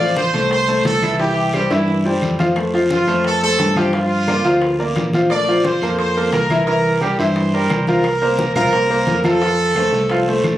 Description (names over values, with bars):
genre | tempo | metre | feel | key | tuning
latin, salsa | 175 BPM | 4/4 | straight | unclear | A4 = 440 Hz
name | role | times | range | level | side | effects
brilliant horn section | melody | 0.0-10.6 s | E4 to D5 | -19 LUFS | right 1 dB | none
bright grand piano | accompaniment | 0.0-10.6 s | E3 to F5 | -18 LUFS | left 1 dB | none
fingered electric bass | bass | 0.0-10.6 s | A1 to G2 | -22 LUFS | equal | none
bongos | percussion | 0.2-10.6 s | none | -29 LUFS | left 3 dB | none
congas | percussion | 0.2-10.6 s | none | -25 LUFS | left 1 dB | none
guiro | percussion | 0.2-10.6 s | none | -33 LUFS | right 1 dB | none
claves | percussion | 0.3-10.6 s | none | -33 LUFS | right 2 dB | none
room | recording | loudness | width
light reverb | recorded on a phone in the room, club reverb | -14 LUFS | side -13 dB against mid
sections
0.0-8.0 A section; 8.0-10.6 B section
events
drum fill 1.7-2.6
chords
0.0 Fmaj7/A; 1.2 C; 2.6 F; 3.9 Gm7; 5.3 Bbmaj7; 6.7 C7; 8.0 C7sus4; 9.4 Bbmaj7(no3) (rootless)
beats
0.16 0.51 0.85 | 1.19 1.53 1.88 2.22 | 2.56 2.91 3.25 3.59 | 3.94 4.28 4.62 4.96 | 5.31 5.65 5.99 6.33 | 6.68 7.02 7.36 7.71 | 8.05 8.39 8.73 9.07 | 9.42 9.76 10.10 10.44